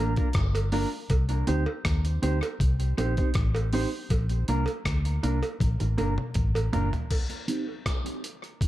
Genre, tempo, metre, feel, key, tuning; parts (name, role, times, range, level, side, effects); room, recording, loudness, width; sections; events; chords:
dub reggae; 80 BPM; 4/4; straight; C dorian; A4 = 437 Hz
mellow electric guitar; accompaniment; 0.0-7.6 s; Bb3 to C5; -31 LUFS; right 2 dB; low-pass filter, tape echo
vintage muted fingered electric bass; bass; 0.0-6.9 s; G1 to Eb2; -26 LUFS; equal
breakbeat sampler-style drum kit; drums; 0.2-8.7 s; crash cymbal, hi-hat, kick drum, rim click, toms; -29 LUFS; equal
cowbell; percussion; 0.5-6.7 s; -36 LUFS; right 3 dB; tape echo
light reverb; dark, warm production; -24 LUFS; side -15 dB against mid
0.0-7.1 A section; 7.1-8.7 B section
drum fill 5.6-7.1; break 7.1-8.7; filter sweep on clean electric guitar 7.1-8.7
0.0 Bb; 1.1 Cm; 4.1 Bb; 7.1 Cm